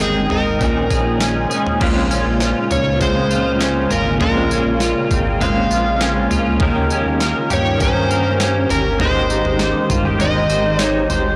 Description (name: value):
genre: dream pop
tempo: 100 BPM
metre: 4/4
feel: straight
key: Bb dorian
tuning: A4 = 436 Hz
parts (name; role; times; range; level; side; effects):
- overdriven slide guitar; melody; 0.0-11.1 s; Ab4 to F5; -24 LUFS; equal; digital delay
- clean electric guitar; accompaniment; 0.0-11.4 s; Bb2 to C5; -26 LUFS; equal; tremolo, lush chorus
- granular cloud pad; sustained chords; 0.0-11.4 s; Db3 to G5; -25 LUFS; equal; built-in reverb
- electric guitar at the edge of break-up; arpeggios; 0.0-11.4 s; Bb2 to C5; -23 LUFS; equal; analog chorus, digital delay
- fat analog bass; bass; 0.0-11.4 s; G1 to G2; -25 LUFS; equal; transformer saturation
- crisp 8-bit digital drum machine; drums; 0.0-11.2 s; crash cymbal, kick drum, snare drum, tambourine, toms; -25 LUFS; equal; overdrive
room: moderate plate reverb, RT60 2.1 s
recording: blown-out, overdriven recording, overdrive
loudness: -17 LUFS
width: mono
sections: 0.0-1.8 A section; 1.8-11.4 B section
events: none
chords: 0.0 Abmaj7; 0.6 Bbm11; 1.8 Bbm9; 6.6 Eb7; 9.0 Abmaj7